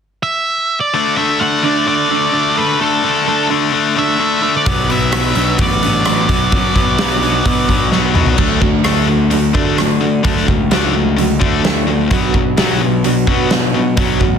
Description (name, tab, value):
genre	quiet-loud alternative rock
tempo	129 BPM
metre	4/4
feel	straight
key	D major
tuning	A4 = 440 Hz
part	octave-fuzz lead guitar	melody	0.2-7.9 s	A4 to F#5	-17 LUFS	right 3 dB	distortion, plate reverb
part	fingerpicked steel-string acoustic guitar	arpeggios	0.9-14.4 s	B2 to F#4	-21 LUFS	right 12 dB	none
part	tight distorted guitar	riff	0.9-14.4 s	B2 to D4	-16 LUFS	left 8 dB	distortion
part	fuzz picked electric bass	bass	4.7-14.4 s	A1 to D3	-19 LUFS	equal	overdrive
part	big rock drum kit	drums	4.7-14.3 s	crash cymbal, hi-hat, kick drum, rim click, snare drum, toms	-17 LUFS	equal	none
room	light reverb, small room ambience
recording	dense, heavily limited modern master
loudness	-12 LUFS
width	side -7 dB against mid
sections	0.9-8.4 A section; 8.4-14.4 B section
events	drum fill 7.9-8.4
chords	0.0 N.C.; 0.9 D5; 4.7 Bm; 8.4 D; 12.1 Bm